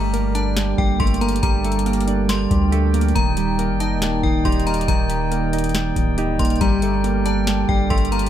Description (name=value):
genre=hip hop, trap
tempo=139 BPM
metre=4/4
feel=half-time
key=G minor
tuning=A4 = 441 Hz
part: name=metallic FM bell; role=second line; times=0.0-8.3 s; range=G5 to C6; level=-27 LUFS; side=left 5 dB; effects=chorus, tape echo
part: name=glassy digital keys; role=accompaniment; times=0.0-8.3 s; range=Eb3 to Eb4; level=-23 LUFS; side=right 1 dB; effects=chorus
part: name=mellow woodwind section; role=sustained chords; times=0.0-8.3 s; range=D4 to G5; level=-29 LUFS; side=left 1 dB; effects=none
part: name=mellow electric guitar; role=arpeggios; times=0.0-8.3 s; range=Eb3 to G4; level=-24 LUFS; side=right 9 dB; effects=tape echo
part: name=long sustained 808-style bass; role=bass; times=0.0-8.3 s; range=D1 to D2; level=-22 LUFS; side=left 1 dB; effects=none
part: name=booming analog drum machine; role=drums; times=0.1-8.3 s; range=hi-hat, kick drum, snare drum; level=-22 LUFS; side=left 1 dB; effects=none
room=digital ambience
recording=none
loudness=-17 LUFS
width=side -10 dB against mid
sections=0.0-8.3 A section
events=none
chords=0.0 Gmadd9; 3.2 Eb; 6.6 Gmadd9